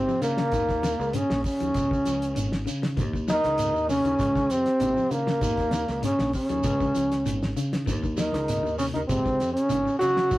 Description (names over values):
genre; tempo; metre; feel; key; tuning
afrobeat; 98 BPM; 4/4; straight; unclear; A4 = 440 Hz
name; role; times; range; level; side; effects
warm trombone; melody; 0.0-10.4 s; Bb3 to Gb4; -24 LUFS; equal; none
raspy tenor saxophone; second line; 0.0-10.4 s; Bb2 to Gb3; -34 LUFS; right 2 dB; none
semi-hollow electric guitar; arpeggios; 0.0-10.4 s; C3 to Gb3; -36 LUFS; left 4 dB; none
fingered electric bass; bass; 0.0-10.4 s; Ab1 to Db3; -31 LUFS; equal; none
shekere; percussion; 0.1-10.4 s; none; -34 LUFS; right 2 dB; none
cloth-damped thuddy drum kit; drums; 0.2-10.4 s; hi-hat, kick drum, snare drum; -31 LUFS; equal; none
room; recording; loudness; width
moderate studio ambience, RT60 0.5 s; rough rehearsal-room recording, warm saturation; -23 LUFS; side -17 dB against mid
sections
0.0-10.4 A section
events
none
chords
0.0 Dbmaj7; 0.5 Eb5; 1.8 Db; 3.0 Eb7(no3); 4.2 Dbmaj7; 5.4 Eb5; 6.6 Db; 7.9 Eb7(no3); 9.1 Db